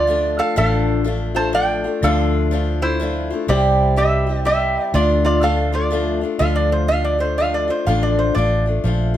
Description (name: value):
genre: honky-tonk and classic country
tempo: 123 BPM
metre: 3/4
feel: swing 62% on 8ths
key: D minor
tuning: A4 = 441 Hz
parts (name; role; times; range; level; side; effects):
- lap resonator guitar; melody; 0.0-8.6 s; E4 to A5; -20 LUFS; right 1 dB; none
- picked old ladder-braced acoustic guitar; accompaniment; 0.0-9.2 s; C3 to G4; -22 LUFS; left 4 dB; none
- vintage muted fingered electric bass; bass; 0.0-9.2 s; A1 to D2; -20 LUFS; right 1 dB; none
room: light reverb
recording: none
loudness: -16 LUFS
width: side -11 dB against mid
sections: 0.0-6.4 A section; 6.4-9.2 B section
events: resonator guitar played with a steel bar solo 6.4-9.2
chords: 0.0 Dm; 3.5 C; 4.9 Dm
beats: 0.08 | 0.57 1.06 1.54 | 2.03 2.52 3.00 | 3.49 3.97 4.46 | 4.95 5.43 5.92 | 6.41 6.89 7.38 | 7.87 8.36 8.84